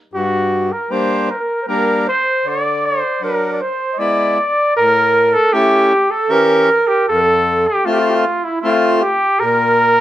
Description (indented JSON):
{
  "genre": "klezmer",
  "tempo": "78 BPM",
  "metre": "3/4",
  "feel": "straight",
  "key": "A phrygian dominant from 4.8 s",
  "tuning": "A4 = 441 Hz",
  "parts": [
    { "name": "mellow cornet", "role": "melody", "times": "0.1-10.0 s", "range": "E4 to D5", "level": "-15 LUFS", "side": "equal", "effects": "plate reverb" },
    { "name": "mellow clarinet", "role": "second line", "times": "0.1-10.0 s", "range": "E4 to Eb5", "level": "-19 LUFS", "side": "right 3 dB", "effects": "none" },
    { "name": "accordion", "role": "accompaniment", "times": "0.1-10.0 s", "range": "F2 to G4", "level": "-18 LUFS", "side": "left 2 dB", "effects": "none" }
  ],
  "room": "wet small room reverb, RT60 0.5 s",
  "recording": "none",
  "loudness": "-13 LUFS",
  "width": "side -13 dB against mid",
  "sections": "0.0-4.8 A section; 4.8-10.0 B section",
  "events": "none",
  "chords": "0.1 Gm; 2.5 D; 4.0 E7; 4.8 A; 7.1 F; 9.4 N.C."
}